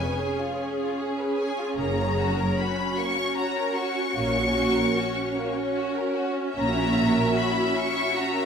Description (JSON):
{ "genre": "classical, slow romantic movement for string orchestra", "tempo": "75 BPM", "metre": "3/4", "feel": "rubato", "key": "F# major", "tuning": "A4 = 440 Hz", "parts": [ { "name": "rich symphonic violin section", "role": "melody", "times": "0.0-8.5 s", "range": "G#5 to C#6", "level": "-29 LUFS", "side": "left 4 dB", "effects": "none" }, { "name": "clear symphonic violin section", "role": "second line", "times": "0.0-8.5 s", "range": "A#3 to E5", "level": "-29 LUFS", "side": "left 2 dB", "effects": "none" }, { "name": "warm symphonic viola section", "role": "accompaniment", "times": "0.0-8.5 s", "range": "C#4 to G#4", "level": "-28 LUFS", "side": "right 2 dB", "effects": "none" }, { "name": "clear symphonic double bass section", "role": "bass", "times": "0.0-7.2 s", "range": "F#1 to A#1", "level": "-32 LUFS", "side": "right 2 dB", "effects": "none" }, { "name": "rich symphonic cello section", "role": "bass", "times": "0.0-7.2 s", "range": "F#2 to A#2", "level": "-29 LUFS", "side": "right 2 dB", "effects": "none" } ], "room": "moderate scoring stage reverb, RT60 1.9 s", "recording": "none", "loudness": "-23 LUFS", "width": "side -7 dB against mid", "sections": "0.0-8.5 A section", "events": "none", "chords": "0.0 C#7; 1.8 F#; 4.2 F#/A#", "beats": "0.16 0.96 | 1.77 2.58 3.36 | 4.16 4.96 5.76 | 6.58 7.38 8.17" }